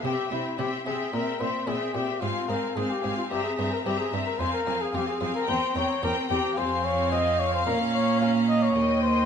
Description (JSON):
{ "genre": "classical, baroque-style concerto movement with solo episodes", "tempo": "110 BPM", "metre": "4/4", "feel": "straight", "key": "F minor", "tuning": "A4 = 439 Hz", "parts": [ { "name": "rich chamber violin section", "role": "melody", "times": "0.0-9.3 s", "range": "G5 to Bb5", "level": "-37 LUFS", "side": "left 5 dB", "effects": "none" }, { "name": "rich studio violin section", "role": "second line", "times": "0.0-9.3 s", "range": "Eb5 to G5", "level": "-32 LUFS", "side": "left 2 dB", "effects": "none" }, { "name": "rich chamber viola section", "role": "accompaniment", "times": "0.0-9.3 s", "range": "Bb3 to Db4", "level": "-33 LUFS", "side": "equal", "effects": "none" }, { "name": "clear chamber cello section", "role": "bass", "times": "0.0-9.3 s", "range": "Eb2 to C3", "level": "-29 LUFS", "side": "right 4 dB", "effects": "none" }, { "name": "dark trumpet", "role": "melody", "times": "0.1-9.3 s", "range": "E4 to F5", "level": "-28 LUFS", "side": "left 3 dB", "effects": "none" }, { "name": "buff-stop harpsichord", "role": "accompaniment", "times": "0.1-9.3 s", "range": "Eb2 to G4", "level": "-38 LUFS", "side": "equal", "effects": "none" } ], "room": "wet recital hall reverb, RT60 1.4 s", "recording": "dark, warm production", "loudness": "-24 LUFS", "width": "side -7 dB against mid", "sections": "0.0-9.3 A section", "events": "none", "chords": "0.0 C; 1.1 C7/Bb; 2.2 Fm/Ab; 3.3 C7/G; 4.4 Fm; 5.5 C7/E; 6.6 Fm; 7.7 Bbm" }